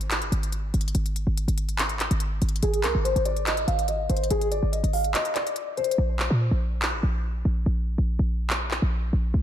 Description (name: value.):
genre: hip hop, trap.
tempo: 143 BPM.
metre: 4/4.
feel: half-time.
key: unclear.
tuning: A4 = 440 Hz.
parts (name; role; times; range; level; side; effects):
short 808-style bass; bass; 0.0-9.4 s; G1 to Bb2; -24 LUFS; equal; none.
trap drum kit; drums; 0.0-8.8 s; handclaps, hi-hat; -29 LUFS; equal; none.
dark grand piano; melody; 2.6-5.9 s; Ab4 to F5; -27 LUFS; left 1 dB; wide subtle chorus, low-pass filter, ping-pong delay.
room: light reverb.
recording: none.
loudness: -23 LUFS.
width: side -10 dB against mid.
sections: 0.0-9.4 A section.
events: break 0.0-2.6; filter sweep on grand piano 0.0-6.0; kick muted 5.1-6.0; hi-hats muted 6.0-9.4.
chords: none.